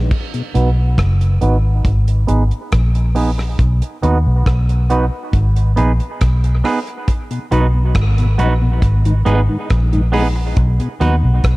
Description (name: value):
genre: dub reggae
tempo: 69 BPM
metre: 4/4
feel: straight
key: B major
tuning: A4 = 440 Hz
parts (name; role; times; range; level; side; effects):
- vintage muted fingered electric bass; bass; 0.0-11.6 s; F#1 to D#2; -14 LUFS; equal; none
- damped 70s drum kit; drums; 0.1-11.6 s; crash cymbal, hi-hat, kick drum, rim click; -20 LUFS; equal; none
- mellow tonewheel organ; accompaniment; 0.3-0.4, 7.3-11.3 s; G#2 to D#4; -24 LUFS; left 2 dB; chorus vibrato, slow rotary speaker, low-pass filter, dub echo
- semi-hollow electric guitar; accompaniment; 0.5-11.1 s; B3 to B4; -21 LUFS; right 3 dB; low-pass filter, dub echo
room: small room ambience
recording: echo-heavy mix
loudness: -13 LUFS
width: side -21 dB against mid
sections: 0.1-11.6 A section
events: filter sweep 0.1-11.6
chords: 0.1 B; 1.9 G#m; 3.6 B; 5.3 G#m; 7.1 B; 8.8 G#m; 10.6 B